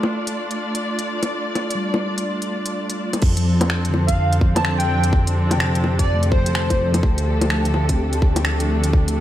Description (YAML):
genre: future garage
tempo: 126 BPM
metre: 4/4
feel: swing 63% on 16ths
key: unclear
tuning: A4 = 440 Hz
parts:
  - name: mellow tine electric piano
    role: accompaniment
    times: 0.0-9.2 s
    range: C3 to C4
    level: -27 LUFS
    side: left 1 dB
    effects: auto-pan, sidechain pumping, tape echo
  - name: muted studio string section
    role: sustained chords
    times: 0.0-9.2 s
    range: F3 to D5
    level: -25 LUFS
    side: equal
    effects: sidechain pumping
  - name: organic electronic drum kit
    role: drums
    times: 0.0-9.2 s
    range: bongos, crash cymbal, finger snaps, hi-hat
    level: -24 LUFS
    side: left 1 dB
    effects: overdrive, studio reverb
  - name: dark detuned saw bass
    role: bass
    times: 3.2-9.2 s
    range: D2 to F2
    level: -20 LUFS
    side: equal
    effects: sidechain pumping
  - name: electronic kick drum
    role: drums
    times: 3.2-9.1 s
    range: none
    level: -18 LUFS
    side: equal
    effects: studio reverb
  - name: flickering grainy texture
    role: texture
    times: 3.8-9.2 s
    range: G4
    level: -34 LUFS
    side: right 2 dB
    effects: built-in reverb
  - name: airy dreamy lead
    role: melody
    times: 4.1-7.0 s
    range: C5 to A5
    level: -25 LUFS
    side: equal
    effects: chorus, ping-pong delay
room: light reverb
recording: vinyl crackle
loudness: -17 LUFS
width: side -12 dB against mid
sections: 0.0-3.2 A section; 3.2-9.2 B section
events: filter sweep on tine electric piano 0.0-3.2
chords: 0.0 Dm; 3.2 F6; 7.0 Dm